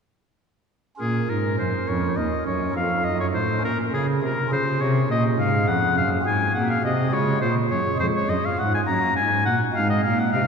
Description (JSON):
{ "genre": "classical, baroque-style sonata movement with continuo", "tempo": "68 BPM (dotted quarters)", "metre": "6/8", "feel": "straight", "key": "Bb minor", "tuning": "A4 = 440 Hz", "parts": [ { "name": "clear oboe", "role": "melody", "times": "1.0-10.5 s", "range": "Ab4 to Bb5", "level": "-24 LUFS", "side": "left 2 dB", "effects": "none" }, { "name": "pipe organ, stopped flute", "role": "accompaniment", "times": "1.0-10.5 s", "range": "Eb2 to Bb4", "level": "-26 LUFS", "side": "right 2 dB", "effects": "none" }, { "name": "rich cello", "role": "bass", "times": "1.0-10.4 s", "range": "Eb2 to Db3", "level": "-24 LUFS", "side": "equal", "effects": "none" } ], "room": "wet church reverb, RT60 3.4 s", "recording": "recorded in a church or concert hall", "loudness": "-20 LUFS", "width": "side -6 dB against mid", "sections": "1.0-10.5 A section", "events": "none", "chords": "1.0 Bbm; 2.8 F7; 3.6 Bbm; 4.5 Db; 6.3 Ab7; 7.1 Db; 8.0 Fm; 8.9 Gb; 9.8 Ab", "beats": "| 1.00 1.88 | 2.76 3.64 | 4.51 5.39 | 6.26 7.12 | 8.00 8.88 | 9.75" }